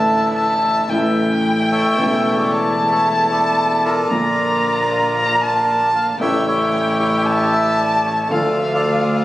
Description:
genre	tango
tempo	113 BPM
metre	4/4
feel	rubato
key	unclear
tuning	A4 = 441 Hz
part	bandoneon	melody	0.0-9.2 s	E4 to F5	-20 LUFS	equal	tape echo
part	warm violin	second line	0.0-9.2 s	F5 to Bb5	-19 LUFS	equal	none
part	warm concert grand piano	accompaniment	0.0-9.2 s	E1 to F4	-21 LUFS	left 1 dB	none
part	clear studio string section	stabs	0.0-9.2 s	C#3 to G4	-31 LUFS	right 1 dB	none
part	clear double bass	bass	0.0-9.2 s	E1 to D2	-28 LUFS	right 1 dB	none
room	moderate club reverb, RT60 0.8 s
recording	recorded on a phone in the room, club reverb, compression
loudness	-15 LUFS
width	side -15 dB against mid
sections	0.0-9.2 A section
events	none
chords	0.0 Asus4; 0.9 A; 4.1 Bb; 6.2 A7; 8.3 Dm

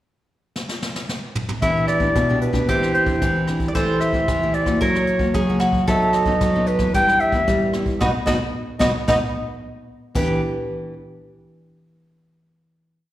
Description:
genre	samba and choro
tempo	113 BPM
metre	4/4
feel	straight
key	E minor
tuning	A4 = 436 Hz
part	jazz brush drum kit	drums	0.6-10.3 s	crash cymbal, hi-hat, kick drum, rim click, snare drum, toms	-25 LUFS	equal	none
part	warm clarinet	melody	1.6-10.4 s	A4 to G5	-22 LUFS	equal	slapback echo
part	mandolin	second line	1.6-10.4 s	D#4 to D5	-25 LUFS	right 2 dB	slapback echo
part	nylon-string guitar	accompaniment	1.6-10.9 s	F#2 to G4	-27 LUFS	left 3 dB	slapback echo
part	nylon-string guitar	bass	1.6-10.4 s	B2 to G3	-23 LUFS	right 1 dB	none
room	light reverb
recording	live gig heard through the venue's PA, recital hall reverb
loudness	-18 LUFS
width	side -14 dB against mid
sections	0.0-1.6 pickup bar; 1.6-10.2 groove; 10.2-12.3 final chord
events	drum fill 0.6-1.6; band accent 8.0-10.2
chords	0.0 N.C.; 1.6 Em7; 2.7 Cadd9/E; 3.8 Am7/E; 4.8 F#; 5.9 B/F#; 6.9 Em/G; 8.0 B; 10.2 Em7

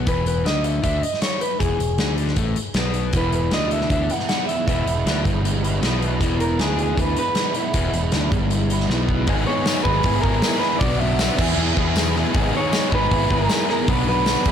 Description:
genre	indie rock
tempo	156 BPM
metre	4/4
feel	straight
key	unclear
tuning	A4 = 440 Hz
part	overdriven electric guitar	riff	0.0-14.5 s	E2 to G#4	-26 LUFS	left 10 dB	none
part	growling fingered electric bass	bass	0.0-14.5 s	E1 to E2	-23 LUFS	equal	overdrive, tube saturation
part	electric guitar through a small old amp	melody	0.1-14.5 s	E4 to F#5	-25 LUFS	right 1 dB	plate reverb
part	big rock drum kit	drums	0.1-14.5 s	crash cymbal, hi-hat, kick drum, snare drum	-23 LUFS	equal	soft clipping on kick
part	sludgy distorted guitar	riff	3.1-14.5 s	E2 to G#4	-26 LUFS	right 7 dB	overdrive, ensemble chorus
part	percussive tonewheel organ	sustained chords	9.3-14.5 s	G#4 to D6	-34 LUFS	equal	none
part	tambourine	percussion	9.7-14.4 s	none	-33 LUFS	left 10 dB	none
room	light reverb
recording	blown-out, overdriven recording, overdrive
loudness	-18 LUFS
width	side -8 dB against mid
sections	0.0-9.3 A section; 9.3-14.5 B section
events	drum fill 8.9-9.3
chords	0.0 E; 9.3 G#m7; 10.0 E/G#; 10.8 Bm; 11.4 E; 12.3 G#m7; 13.1 E/G#; 13.9 Bm

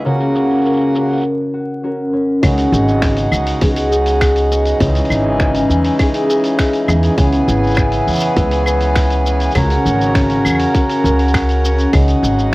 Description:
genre	folktronica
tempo	101 BPM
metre	4/4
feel	straight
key	unclear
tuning	A4 = 440 Hz
part	pedal harmonium	sustained chords	0.0-12.5 s	C#2 to A#4	-18 LUFS	right 1 dB	cassette tape, plate reverb
part	concert harp	arpeggios	0.0-12.5 s	C#3 to B4	-17 LUFS	left 1 dB	cassette tape
part	lo-fi sampler-style drum kit	drums	0.1-12.5 s	claves, finger snaps, hi-hat, shaker	-24 LUFS	left 1 dB	low-pass filter on perc, cassette tape, low-pass filter on hats, low-pass filter on snare
part	upright bass	bass	2.4-12.5 s	G#1 to E2	-16 LUFS	equal	none
part	electronic kick drum	drums	2.4-12.1 s	none	-16 LUFS	equal	overdrive, cassette tape
room	light reverb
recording	home recording on cassette, vinyl crackle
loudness	-12 LUFS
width	side -20 dB against mid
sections	0.0-2.4 A section; 2.4-12.5 B section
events	filter sweep on harmonium 0.0-2.4; break 1.2-2.4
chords	0.1 F#/C#; 2.4 B6; 4.8 C#madd9; 7.2 E; 9.6 F#; 11.9 B6 (rootless)

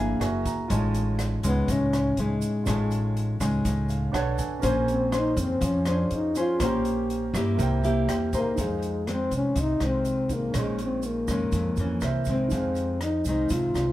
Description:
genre	bossa nova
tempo	122 BPM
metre	4/4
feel	straight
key	F minor from 8.6 s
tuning	A4 = 440 Hz
part	nylon-string guitar	accompaniment	0.0-13.9 s	F2 to C#5	-28 LUFS	left 1 dB	none
part	warm concert grand piano	accompaniment	0.0-13.9 s	Db4 to Bb5	-35 LUFS	right 6 dB	none
part	upright bass	bass	0.0-13.9 s	Gb1 to G2	-29 LUFS	equal	none
part	open jazz drum kit	drums	0.2-13.9 s	hi-hat, kick drum, rim click	-34 LUFS	equal	none
part	tube shaker	percussion	0.5-13.9 s	none	-45 LUFS	right 9 dB	none
part	breathy trombone	melody	1.5-13.9 s	Ab3 to G4	-27 LUFS	left 1 dB	plate reverb
room	wet large studio reverb, RT60 0.8 s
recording	heard from further back in the room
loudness	-23 LUFS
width	side -14 dB against mid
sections	0.0-8.6 A section; 8.6-13.9 B section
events	grand piano fill 0.0-0.7, 3.7-4.6, 7.6-8.6; trombone solo 0.0-8.6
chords	0.2 Gb9; 0.7 F7alt/A; 4.1 Bm9; 4.6 Bbm9; 7.6 C7; 8.6 Fm7; 10.5 Bbm11; 12.0 C7b9; 12.5 Fm7

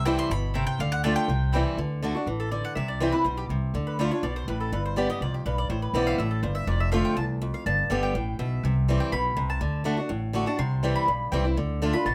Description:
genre	bluegrass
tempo	245 BPM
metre	4/4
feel	straight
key	C major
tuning	A4 = 440 Hz
part	mandolin	melody	0.0-1.7 s	F5 to C6	-33 LUFS	equal	none
part	picked acoustic archtop guitar	accompaniment	0.0-12.1 s	E2 to G4	-30 LUFS	equal	none
part	upright bass	bass	0.0-12.1 s	F1 to D2	-30 LUFS	equal	none
part	mandolin	stabs	0.1-12.1 s	A3 to C6	-33 LUFS	equal	none
room	little or no reverb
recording	close, detailed microphones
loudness	-26 LUFS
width	mono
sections	0.0-1.8 A section; 1.8-9.6 A section; 9.6-12.1 A section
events	mandolin solo 0.0-1.8, 1.8-12.1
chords	0.0 C; 0.8 Dm; 1.3 C; 1.8 D; 2.8 C; 3.7 Dm; 4.7 G; 5.7 Amadd9; 6.7 F6; 7.7 G; 8.6 C; 9.6 D; 10.6 C; 11.6 Dm

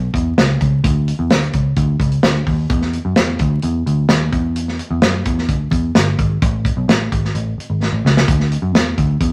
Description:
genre	uptempo 1960s-style soul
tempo	129 BPM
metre	4/4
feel	straight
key	unclear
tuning	A4 = 441 Hz
part	vintage muted picked electric bass	bass	0.0-9.3 s	G1 to F#2	-20 LUFS	equal	none
part	natural country drum kit	drums	0.1-9.3 s	hi-hat, kick drum, snare drum	-19 LUFS	equal	none
room	moderate studio reverb, RT60 0.8 s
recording	vinyl crackle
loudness	-17 LUFS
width	mono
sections	0.8-9.3 A section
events	drum fill 7.8-8.3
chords	none

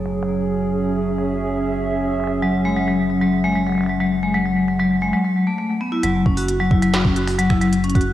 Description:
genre	IDM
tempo	133 BPM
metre	4/4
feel	straight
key	unclear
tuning	A4 = 440 Hz
part	warbly tape-like pad	sustained chords	0.0-5.1 s	F#3 to E5	-23 LUFS	right 3 dB	chorus, built-in reverb, cassette tape
part	rubbery square bass	bass	0.0-8.1 s	F#1	-27 LUFS	right 1 dB	none
part	industrial drum kit	drums	0.1-8.1 s	finger snaps, hi-hat, snare drum	-27 LUFS	equal	low-pass filter on hats, studio reverb, cassette tape, low-pass filter on snare
part	vibraphone with medium hard mallets	arpeggios	2.4-8.0 s	F#3 to F#4	-18 LUFS	left 2 dB	cassette tape, analog delay
part	electronic kick drum	drums	6.3-8.0 s	none	-17 LUFS	right 1 dB	overdrive, studio reverb, cassette tape
room	moderate lush hall reverb, RT60 2.0 s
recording	home recording on cassette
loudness	-17 LUFS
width	side -13 dB against mid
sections	0.0-6.0 A section; 6.0-8.1 B section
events	none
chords	0.0 F#7sus2; 6.0 N.C.

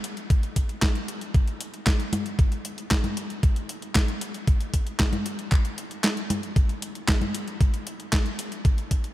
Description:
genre	italo disco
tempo	115 BPM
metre	4/4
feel	straight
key	none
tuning	none
part	clean 12-bit digital drum machine	drums	0.0-9.1 s	congas, handclaps, hi-hat, snare drum	-28 LUFS	equal	overdrive
part	electronic kick drum	drums	0.3-9.0 s	none	-21 LUFS	equal	overdrive
room	light reverb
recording	none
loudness	-23 LUFS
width	side -15 dB against mid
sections	0.0-9.1 A section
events	kick drops out 6.0-6.6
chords	none

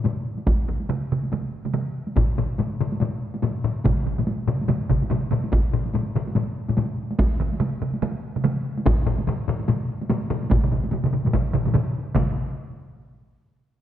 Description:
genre	japanese traditional, taiko drum ensemble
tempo	144 BPM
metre	4/4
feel	swing 60% on 16ths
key	none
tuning	none
part	taiko ensemble	percussion	0.0-12.3 s	none	-30 LUFS	right 1 dB	none
part	taiko ensemble	percussion	0.0-12.5 s	none	-24 LUFS	left 4 dB	none
part	solo taiko drums	percussion	0.5-12.3 s	none	-24 LUFS	right 1 dB	none
part	taiko ensemble	percussion	0.7-12.5 s	none	-26 LUFS	right 4 dB	none
room	wet scoring stage reverb, RT60 1.7 s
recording	none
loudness	-21 LUFS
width	side -11 dB against mid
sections	0.0-12.2 A section; 12.2-13.8 B section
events	speeding up 0.0-13.8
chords	none

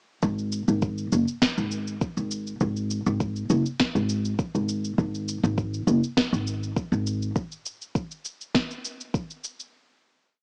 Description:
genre	organic downtempo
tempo	101 BPM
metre	4/4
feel	swing 53% on 16ths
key	unclear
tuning	A4 = 440 Hz
part	upright bass	bass	0.2-7.3 s	F#1 to G#1	-27 LUFS	equal	sidechain pumping
part	electronic cabasa and snare drum	drums	0.2-9.7 s	none	-30 LUFS	equal	cassette tape
part	electronic kick drum	drums	0.2-9.3 s	none	-30 LUFS	equal	cassette tape
room	light reverb, digital ambience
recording	home recording on cassette, small speaker sound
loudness	-27 LUFS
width	mono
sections	0.2-9.7 groove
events	none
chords	none

